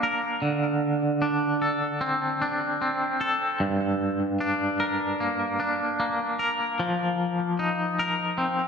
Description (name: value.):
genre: rock.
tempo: 75 BPM.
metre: 4/4.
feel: straight.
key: G minor.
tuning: A4 = 441 Hz.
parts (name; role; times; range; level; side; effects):
twangy electric guitar; arpeggios; 0.0-8.7 s; G2 to Bb4; -24 LUFS; equal; tremolo, analog delay, slapback echo.
room: wet concert hall reverb, RT60 1.8 s.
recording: big arena sound.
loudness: -24 LUFS.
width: side -6 dB against mid.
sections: 0.0-8.7 A section.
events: none.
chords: 0.4 D5; 3.6 Gm; 6.8 F7sus4.